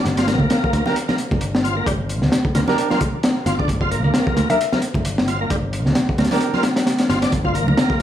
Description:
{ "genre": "breakbeat, breaks", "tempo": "132 BPM", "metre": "4/4", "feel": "swing 56% on 16ths", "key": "unclear", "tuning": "A4 = 440 Hz", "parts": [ { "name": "bright tonewheel organ", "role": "riff", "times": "0.0-8.0 s", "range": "G3 to F4", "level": "-24 LUFS", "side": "equal", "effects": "overdrive, chorus vibrato, slow rotary speaker, tape echo" }, { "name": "crunchy breakbeat drum kit", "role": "drums", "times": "0.0-8.0 s", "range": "hi-hat, kick drum, snare drum", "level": "-19 LUFS", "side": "equal", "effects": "none" }, { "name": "modern bright picked electric bass", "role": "bass", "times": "0.1-7.7 s", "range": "G1 to D2", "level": "-22 LUFS", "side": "equal", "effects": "none" }, { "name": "congas", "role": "percussion", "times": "0.7-8.0 s", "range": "none", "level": "-27 LUFS", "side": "right 2 dB", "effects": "none" }, { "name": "mellow horn section", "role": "stabs", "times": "0.9-6.6 s", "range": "D4 to Bb4", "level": "-26 LUFS", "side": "right 5 dB", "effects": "tape echo" }, { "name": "mallet-like synth pluck", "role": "melody", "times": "4.5-5.1 s", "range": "E5", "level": "-24 LUFS", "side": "left 6 dB", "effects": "chorus, phaser, old record sound, tape echo" } ], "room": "small room ambience", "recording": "studio reverb", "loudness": "-16 LUFS", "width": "side -11 dB against mid", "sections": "0.0-8.0 A section", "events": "none", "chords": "0.0 Gm" }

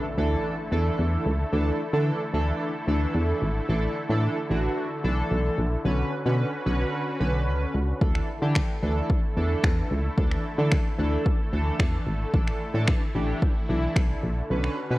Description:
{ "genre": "dance-pop", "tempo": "111 BPM", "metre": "4/4", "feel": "straight", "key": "D major", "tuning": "A4 = 440 Hz", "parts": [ { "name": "chorused polysynth", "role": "accompaniment", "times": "0.0-15.0 s", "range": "D3 to B4", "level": "-30 LUFS", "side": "right 1 dB", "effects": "sidechain pumping" }, { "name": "filtered supersaw swell", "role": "sustained chords", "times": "0.0-15.0 s", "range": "D3 to B4", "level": "-33 LUFS", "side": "equal", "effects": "sidechain pumping" }, { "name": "impact", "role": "sound effects", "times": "0.0-1.5 s", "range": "none", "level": "-40 LUFS", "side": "left 1 dB", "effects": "none" }, { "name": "solid FM bass", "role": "bass", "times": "0.2-15.0 s", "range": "G#1 to D3", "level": "-25 LUFS", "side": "equal", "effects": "sidechain pumping" }, { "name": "deep house drum kit", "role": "drums", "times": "8.0-14.8 s", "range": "finger snaps, kick drum", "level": "-24 LUFS", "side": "equal", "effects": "overdrive" } ], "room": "light reverb", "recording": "worn, warbling old tape, cassette tape, warbly pitch drift", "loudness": "-23 LUFS", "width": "side -17 dB against mid", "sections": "0.0-15.0 A section", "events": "impact 0.0-1.5; kick muted 14.5-15.0", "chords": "0.0 Dsus2; 3.7 Asus4; 5.9 Bmadd9; 8.0 Dsus2; 12.3 Asus4" }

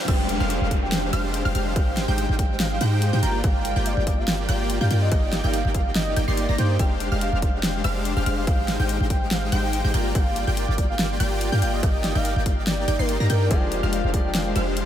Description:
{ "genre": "future bass", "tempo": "143 BPM", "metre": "4/4", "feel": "swing 54% on 16ths, half-time", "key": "F dorian", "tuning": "A4 = 440 Hz", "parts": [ { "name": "big bright polysynth", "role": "riff", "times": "0.0-14.9 s", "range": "Ab3 to C6", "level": "-27 LUFS", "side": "equal", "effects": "chorus, sidechain pumping, tape echo" }, { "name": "warm velvety synth lead", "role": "melody", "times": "0.1-14.5 s", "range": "Bb4 to Bb5", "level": "-30 LUFS", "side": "right 1 dB", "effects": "chorus, sidechain pumping, tape echo" }, { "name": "wide unison pluck", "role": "arpeggios", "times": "0.1-14.9 s", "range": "F6 to C7", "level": "-34 LUFS", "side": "right 1 dB", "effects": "analog chorus, sidechain pumping" }, { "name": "warm 808-style bass", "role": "bass", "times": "0.1-14.9 s", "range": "F1 to Ab2", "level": "-24 LUFS", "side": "equal", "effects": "sidechain pumping" }, { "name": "electronic kick drum", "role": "drums", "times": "0.1-14.2 s", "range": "none", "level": "-22 LUFS", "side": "equal", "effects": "none" }, { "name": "pop drum kit", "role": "drums", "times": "0.1-14.9 s", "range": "crash cymbal, hi-hat, snare drum", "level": "-30 LUFS", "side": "equal", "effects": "none" }, { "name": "downlifter", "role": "sound effects", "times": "0.1-3.4 s", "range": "none", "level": "-37 LUFS", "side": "equal", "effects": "none" }, { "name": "warm grand piano", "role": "accompaniment", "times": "13.5-14.9 s", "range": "F3 to D5", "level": "-29 LUFS", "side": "left 3 dB", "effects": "vintage 12-bit sampler grit, sidechain pumping, tape echo" } ], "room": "moderate huge ambient reverb, RT60 8.9 s", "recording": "dreamy mix soaked in reverb, high-pass filter", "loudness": "-20 LUFS", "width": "side -10 dB against mid", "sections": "0.1-14.9 A section", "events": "drop 0.1-14.9; kick drops out 13.1-13.5", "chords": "0.1 Fm69; 1.8 Abmaj7; 3.2 Gm7; 5.1 Ebmaj7/G; 6.8 Fm69; 8.5 Abmaj7; 9.9 Gm7; 11.8 Ebmaj7/G; 13.5 Fm69" }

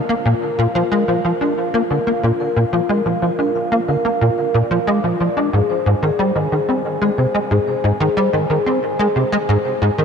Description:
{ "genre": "ambient, sequencer-driven space music", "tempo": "91 BPM", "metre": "4/4", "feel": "straight", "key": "unclear", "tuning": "A4 = 440 Hz", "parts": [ { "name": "vibraphone with soft mallets", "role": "arpeggios", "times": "0.0-10.0 s", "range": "F4 to D6", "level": "-20 LUFS", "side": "moving between left 5 dB and right 3 dB", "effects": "auto-pan, tape echo" }, { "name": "tight sequencer bass", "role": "riff", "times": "0.1-10.0 s", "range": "Ab2 to D4", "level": "-17 LUFS", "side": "equal", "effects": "ensemble chorus, tape echo" } ], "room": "wet huge ambient reverb, RT60 8.4 s", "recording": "dark, warm production", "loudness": "-15 LUFS", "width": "side -6 dB against mid", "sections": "0.0-10.0 A section", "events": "none", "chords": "0.0 Bb; 5.5 Ab" }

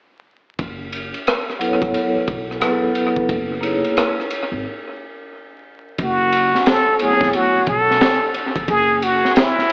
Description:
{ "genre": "hip hop, jazz-hop", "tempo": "89 BPM", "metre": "4/4", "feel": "swing 65% on 16ths", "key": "F# minor", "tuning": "A4 = 440 Hz", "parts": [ { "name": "upright bass", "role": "bass", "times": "0.6-9.2 s", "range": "F#1 to B1", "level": "-28 LUFS", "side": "equal", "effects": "none" }, { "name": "crunchy breakbeat drum kit", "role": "drums", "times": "0.6-9.7 s", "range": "hi-hat, kick drum, ride cymbal, rim click, snare drum", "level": "-21 LUFS", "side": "equal", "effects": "analog delay" }, { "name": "vibraphone with medium hard mallets", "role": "accompaniment", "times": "1.6-7.5 s", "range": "F#3 to C#5", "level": "-20 LUFS", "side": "equal", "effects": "low-pass filter, analog delay" }, { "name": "trumpet with plunger mute", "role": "melody", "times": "6.0-9.7 s", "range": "E4 to A4", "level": "-15 LUFS", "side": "equal", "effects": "analog delay" } ], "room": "light reverb, small room reverb", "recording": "echo-heavy mix, vinyl crackle, AM radio sound", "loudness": "-15 LUFS", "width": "side -33 dB against mid", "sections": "0.6-6.0 A section; 6.0-9.7 B section", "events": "filter sweep on vibraphone 0.6-6.0; break 4.6-6.0", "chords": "0.6 F#m7; 3.3 F#13; 6.0 F#m7; 8.7 F#7sus2" }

